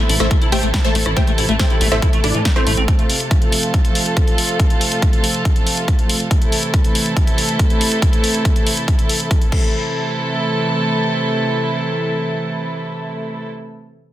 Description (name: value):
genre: uplifting trance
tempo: 140 BPM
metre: 4/4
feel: straight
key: A minor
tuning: A4 = 439 Hz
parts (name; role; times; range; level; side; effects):
- wide unison pluck; melody; 0.0-2.8 s; C4 to A5; -22 LUFS; right 1 dB; sidechain pumping, tape echo
- dark studio string section; sustained chords; 0.0-13.5 s; C3 to A4; -20 LUFS; right 1 dB; sidechain pumping
- liquid acid bass; arpeggios; 0.1-2.8 s; E3 to E4; -24 LUFS; left 3 dB; phaser, lush chorus, sidechain pumping, tape echo
- plucky analog bass; bass; 0.1-2.9 s; A1 to A2; -19 LUFS; equal; sidechain pumping
- punchy analog drum machine; drums; 0.1-9.6 s; crash cymbal, hi-hat, rim click, snare drum; -23 LUFS; left 1 dB; sidechain pumping on hats, sidechain pumping on cymbals
- electronic kick drum; drums; 0.3-9.6 s; none; -16 LUFS; equal; none
room: light reverb, digital ambience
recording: dense, heavily limited modern master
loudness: -14 LUFS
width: side -13 dB against mid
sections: 0.0-9.7 A section; 9.7-13.2 B section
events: none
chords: 0.0 Am; 2.9 F; 6.3 Am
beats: 0.31 0.74 | 1.17 1.59 2.02 2.45 | 2.88 3.31 3.74 4.17 | 4.59 5.02 5.45 5.88 | 6.31 6.74 7.17 7.59 | 8.02 8.45 8.88 9.31 | 9.74 10.17 10.60 11.02 | 11.45 11.88 12.31 12.74